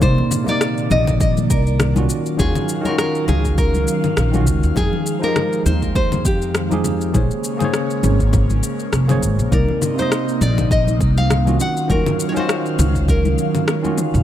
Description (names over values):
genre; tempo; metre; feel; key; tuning
sunset chillout; 101 BPM; 4/4; swing 56% on 16ths; unclear; A4 = 440 Hz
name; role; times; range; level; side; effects
nylon-string guitar; melody; 0.0-13.9 s; G4 to Gb5; -23 LUFS; left 1 dB; digital delay
barky tine electric piano; accompaniment; 0.0-14.2 s; C3 to G5; -23 LUFS; equal; overdrive, auto-pan, tape echo
airy breathy pad; sustained chords; 0.0-14.2 s; Bb2 to F5; -25 LUFS; equal; chorus, phaser
upright bass; bass; 0.0-14.2 s; F1 to Gb2; -18 LUFS; equal; tube saturation
deep house drum kit; drums; 0.0-14.2 s; congas, rim click, shaker, toms; -23 LUFS; left 2 dB; overdrive
electronic kick drum; drums; 0.0-13.2 s; none; -20 LUFS; equal; overdrive
congas; percussion; 0.0-14.0 s; none; -26 LUFS; left 3 dB; none
room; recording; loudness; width
little or no reverb; none; -15 LUFS; side -11 dB against mid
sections
0.0-14.2 A section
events
kick drops out 13.7-14.2; drum fill 13.7-14.2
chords
0.0 Cm9; 2.1 Ebm9; 4.8 Fm9; 7.1 Bbm9; 9.5 Cm9; 11.6 Ebm9